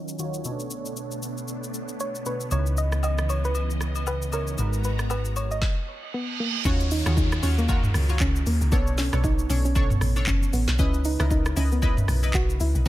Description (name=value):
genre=amapiano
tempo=116 BPM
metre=4/4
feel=swing 58% on 16ths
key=unclear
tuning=A4 = 440 Hz
part: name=soft round pluck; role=melody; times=0.0-12.9 s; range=Bb3 to Eb5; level=-30 LUFS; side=equal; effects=chorus, low-pass filter, digital delay
part: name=warm analog keys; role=accompaniment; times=0.0-12.9 s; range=B2 to Db5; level=-33 LUFS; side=right 2 dB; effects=chorus, low-pass filter
part: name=string machine, violas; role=sustained chords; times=0.0-5.6 s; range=Db3 to Bb5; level=-35 LUFS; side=equal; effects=ensemble chorus, low-pass filter
part: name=afro-pop drum kit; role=drums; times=0.1-12.9 s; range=handclaps, hi-hat, kick drum, rim click, shaker, snare drum, toms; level=-26 LUFS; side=equal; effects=none
part: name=hollow-body short-scale fingered electric bass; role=bass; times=2.5-5.6 s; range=Ab1 to Db2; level=-25 LUFS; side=equal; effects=none
part: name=agogo bells and woodblock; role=percussion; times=2.5-5.5 s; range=none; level=-37 LUFS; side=left 8 dB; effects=none
part: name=reverse cymbal and downlifter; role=sound effects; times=5.9-10.8 s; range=none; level=-34 LUFS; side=right 4 dB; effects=none
part: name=punchy chord stab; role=stabs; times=6.6-12.9 s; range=D4 to Eb5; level=-34 LUFS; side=left 2 dB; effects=chorus, digital delay
part: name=deep log drum bass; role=bass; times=6.7-12.9 s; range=F#1 to Eb2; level=-23 LUFS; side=equal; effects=none
room=little or no reverb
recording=none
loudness=-22 LUFS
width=side -15 dB against mid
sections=0.0-6.7 A section; 6.7-12.9 B section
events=filter sweep 0.0-6.7; reverse cymbal 5.9-6.7; drop 6.7-12.9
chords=0.4 Bm9; 2.5 Dbm9; 4.6 Abm9; 6.7 Ebm9; 8.7 Bm9; 10.8 Dbm9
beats=| 0.44 0.96 1.48 2.00 | 2.51 3.03 3.55 4.07 | 4.58 5.10 5.62 6.13 | 6.65 7.17 7.69 8.20 | 8.72 9.24 9.76 10.27 | 10.79 11.31 11.82 12.34 | 12.86